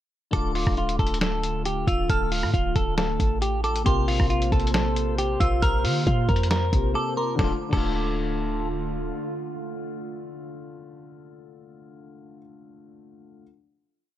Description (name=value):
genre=hip hop, trap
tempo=136 BPM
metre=4/4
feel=half-time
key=D minor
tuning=A4 = 441 Hz
part: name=clean electric guitar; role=melody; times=0.3-8.7 s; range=F4 to Bb4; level=-28 LUFS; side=equal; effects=tape echo
part: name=glassy synth bell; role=second line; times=0.3-8.7 s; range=C6 to F6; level=-33 LUFS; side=right 3 dB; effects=chorus, tremolo, tape echo
part: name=dark grand piano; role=accompaniment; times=0.3-13.4 s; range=C3 to G4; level=-33 LUFS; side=left 4 dB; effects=none
part: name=warbly tape-like pad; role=sustained chords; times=1.1-11.7 s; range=D3 to C5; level=-33 LUFS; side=right 1 dB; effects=chorus, built-in reverb
part: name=clean 808-style bass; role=bass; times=0.3-9.1 s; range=D1 to D3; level=-26 LUFS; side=equal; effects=none
part: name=lo-fi sampler-style drum kit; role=drums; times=0.3-7.8 s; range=crash cymbal, hi-hat, kick drum, rim click, snare drum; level=-26 LUFS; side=equal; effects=none
room=little or no reverb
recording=none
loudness=-22 LUFS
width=side -12 dB against mid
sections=0.3-7.4 hook; 7.4-10.9 final chord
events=break 6.9-7.4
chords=0.3 Dm; 3.9 Bbsus2; 7.4 Dm